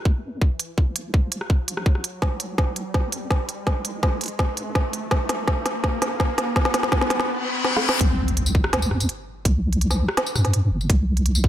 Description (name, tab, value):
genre	half-time drum and bass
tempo	166 BPM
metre	4/4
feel	half-time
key	unclear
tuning	A4 = 439 Hz
part	riser, reverse cymbal and impact	sound effects	0.0-9.5 s	none	-29 LUFS	left 1 dB	none
part	deep soft wobble bass	bass	0.1-11.5 s	G1 to G2	-24 LUFS	equal	chorus, high-pass filter
part	electronic kick drum	drums	0.1-11.5 s	none	-20 LUFS	equal	none
part	organic electronic drum kit	drums	0.6-11.4 s	hi-hat, rim click, snare drum, tambourine	-24 LUFS	equal	none
room	light reverb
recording	none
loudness	-20 LUFS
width	side -12 dB against mid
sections	0.0-8.0 A section; 8.0-11.5 B section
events	build-up 0.0-8.0; riser 0.0-8.0; drum fill 2.2-7.3, 7.6-8.0; reverse cymbal 7.3-8.0; drop 8.0-11.5; impact 8.0-9.5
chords	none